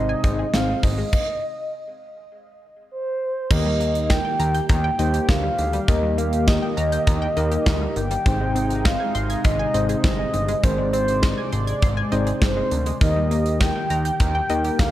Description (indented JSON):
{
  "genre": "synth-pop",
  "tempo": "101 BPM",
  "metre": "4/4",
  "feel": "straight",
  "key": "Eb major",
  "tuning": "A4 = 440 Hz",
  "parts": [
    { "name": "mellow horn-like synth lead", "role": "melody", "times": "0.0-14.9 s", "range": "C5 to G5", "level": "-25 LUFS", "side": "right 1 dB", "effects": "chorus, tape echo" },
    { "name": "chorused pulse-width pad", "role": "sustained chords", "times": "0.0-14.9 s", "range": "C3 to D5", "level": "-28 LUFS", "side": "equal", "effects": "none" },
    { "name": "analog pluck", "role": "arpeggios", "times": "0.0-14.9 s", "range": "Eb3 to Ab6", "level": "-31 LUFS", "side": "left 1 dB", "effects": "chorus, phaser, tape echo" },
    { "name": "fat analog bass", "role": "bass", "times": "0.0-14.9 s", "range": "G1 to Eb2", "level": "-25 LUFS", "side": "equal", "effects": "none" },
    { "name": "tine electric piano", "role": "accompaniment", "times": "0.2-14.9 s", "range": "Bb3 to C5", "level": "-28 LUFS", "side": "left 2 dB", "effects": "medium stereo tremolo" },
    { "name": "gated 80s drum kit", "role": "drums", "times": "0.2-14.9 s", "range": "crash cymbal, hi-hat, kick drum, snare drum", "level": "-22 LUFS", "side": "equal", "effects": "none" }
  ],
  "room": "light reverb, small room ambience",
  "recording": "none",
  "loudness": "-19 LUFS",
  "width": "side -14 dB against mid",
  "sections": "0.0-3.5 A section; 3.5-14.9 B section",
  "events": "stop 1.1-3.5",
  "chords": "0.0 Ab; 3.5 Eb; 8.3 Ab; 13.0 Eb"
}